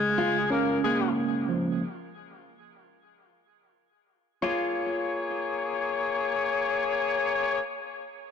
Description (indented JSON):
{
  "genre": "hip hop",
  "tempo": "free time",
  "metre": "none",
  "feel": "none",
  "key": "Bb minor",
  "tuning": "A4 = 439 Hz",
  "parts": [
    { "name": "mellow tine electric piano", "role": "accompaniment", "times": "0.0-1.8 s", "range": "Db3 to Db4", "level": "-27 LUFS", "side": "right 4 dB", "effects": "medium stereo tremolo, cassette tape, high-pass filter, low-pass filter" },
    { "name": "warm saxophone section", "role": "stabs", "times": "0.0-7.6 s", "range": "Ab3 to Db5", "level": "-27 LUFS", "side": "left 4 dB", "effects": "high-pass filter, low-pass filter, ping-pong delay" },
    { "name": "nylon-string guitar", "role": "melody", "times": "0.2-0.4, 4.4-6.3 s", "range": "F4", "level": "-33 LUFS", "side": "left 1 dB", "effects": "high-pass filter, low-pass filter, ping-pong delay" }
  ],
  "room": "moderate echo chamber reverb, RT60 2.1 s",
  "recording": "blown-out, overdriven recording, overdrive",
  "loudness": "-25 LUFS",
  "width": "side -7 dB against mid",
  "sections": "0.0-4.4 A section; 4.4-7.0 B section",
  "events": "none",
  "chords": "0.0 Bbm7; 1.8 N.C.; 4.4 Bbm7"
}